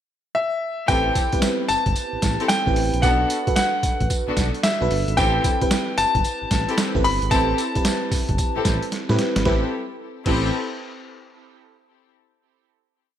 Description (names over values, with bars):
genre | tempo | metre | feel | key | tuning
R&B, new jack swing | 112 BPM | 4/4 | swing 65% on 16ths | A dorian | A4 = 440 Hz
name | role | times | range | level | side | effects
clear grand piano | melody | 0.3-8.9 s | E5 to B5 | -23 LUFS | left 2 dB | ping-pong delay
FM electric piano with soft pad layer | accompaniment | 0.9-10.5 s | B3 to B4 | -26 LUFS | right 2 dB | chorus
muted studio string section | stabs | 0.9-10.5 s | B3 to A4 | -29 LUFS | left 3 dB | ping-pong delay
smooth synth bass | bass | 0.9-10.5 s | G1 to A2 | -25 LUFS | equal | none
boom bap sampler-style drum kit | drums | 0.9-10.4 s | crash cymbal, hi-hat, kick drum, snare drum, tambourine | -23 LUFS | right 1 dB | overdrive, gated reverb
room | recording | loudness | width
light reverb | bright 1980s-style digital production | -19 LUFS | side -10 dB against mid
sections
0.0-0.9 pickup bar; 0.9-9.5 chorus; 9.5-11.6 final chord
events
drum fill 8.9-9.5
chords
0.0 N.C.; 0.9 Am7; 3.0 Bm7; 5.2 Am7